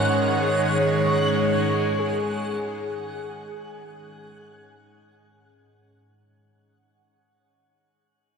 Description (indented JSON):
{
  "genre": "ambient",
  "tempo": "free time",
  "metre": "none",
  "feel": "none",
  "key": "unclear",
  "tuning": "A4 = 440 Hz",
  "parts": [
    { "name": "breathy flute-like synth lead", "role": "melody", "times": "0.0-5.2 s", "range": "Ab4 to Db5", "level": "-26 LUFS", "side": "equal", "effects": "analog chorus, diffuse ambient delay" },
    { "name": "evolving wavetable pad", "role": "sustained chords", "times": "0.0-6.3 s", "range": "Ab2 to Db5", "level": "-25 LUFS", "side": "equal", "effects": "phaser, built-in reverb" },
    { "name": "bowed-like drone", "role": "drone", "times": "0.0-6.4 s", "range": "Ab3 to Eb4", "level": "-34 LUFS", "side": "equal", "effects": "built-in reverb" },
    { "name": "backwards swelling texture", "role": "texture", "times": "0.0-6.3 s", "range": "Gb5 to Gb6", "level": "-31 LUFS", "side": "right 1 dB", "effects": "built-in reverb" }
  ],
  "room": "wet shimmer reverb, RT60 7.2 s",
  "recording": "dark, warm production",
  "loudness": "-21 LUFS",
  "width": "side -6 dB against mid",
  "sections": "0.0-6.3 A section",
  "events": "fade-out 0.0-6.3",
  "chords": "0.0 Gb/Ab",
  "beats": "free time"
}